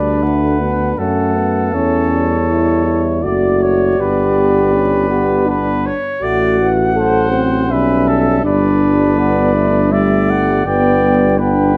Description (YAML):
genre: classical, brass quintet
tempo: 81 BPM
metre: 3/4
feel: straight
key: G major from 8.4 s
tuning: A4 = 441 Hz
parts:
  - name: warm cornet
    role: melody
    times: 0.0-11.8 s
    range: C#5 to G5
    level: -23 LUFS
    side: equal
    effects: none
  - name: clear trumpet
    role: second line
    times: 0.0-11.8 s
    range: A4 to D5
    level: -23 LUFS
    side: equal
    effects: none
  - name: mellow French horn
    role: accompaniment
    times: 0.0-11.8 s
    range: G3 to A4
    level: -19 LUFS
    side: equal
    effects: none
  - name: warm trombone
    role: accompaniment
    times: 0.0-11.8 s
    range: E3 to C#4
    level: -25 LUFS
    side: equal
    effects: none
  - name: mellow bass trombone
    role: bass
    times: 0.0-11.8 s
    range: F#1 to F#2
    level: -19 LUFS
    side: equal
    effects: none
room: moderate recital hall reverb, RT60 1.4 s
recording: close, detailed microphones, vinyl crackle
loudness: -14 LUFS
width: mono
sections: 0.0-11.8 A section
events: none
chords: 0.0 D; 1.7 C#dim/E; 3.2 D/F#; 4.0 G; 6.2 F#dim/A; 7.7 G/B; 8.4 G